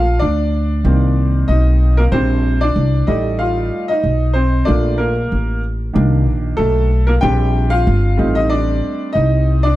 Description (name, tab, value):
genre	hip hop, jazz-hop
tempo	94 BPM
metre	4/4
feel	swing 57% on 16ths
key	unclear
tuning	A4 = 443 Hz
part	warm grand piano	accompaniment	0.0-9.8 s	Eb3 to G5	-18 LUFS	right 1 dB	none
part	upright bass	bass	0.0-9.8 s	G1 to D2	-15 LUFS	equal	none
room	studio reverb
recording	dark, warm production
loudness	-13 LUFS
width	side -16 dB against mid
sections	0.0-9.8 A section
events	grand piano solo 0.0-9.8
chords	0.0 Bb; 0.8 Cm7; 2.1 Bb69; 3.1 F13/A; 4.7 Bbmaj7; 6.0 Cm7; 7.2 Bb69; 8.2 F13/A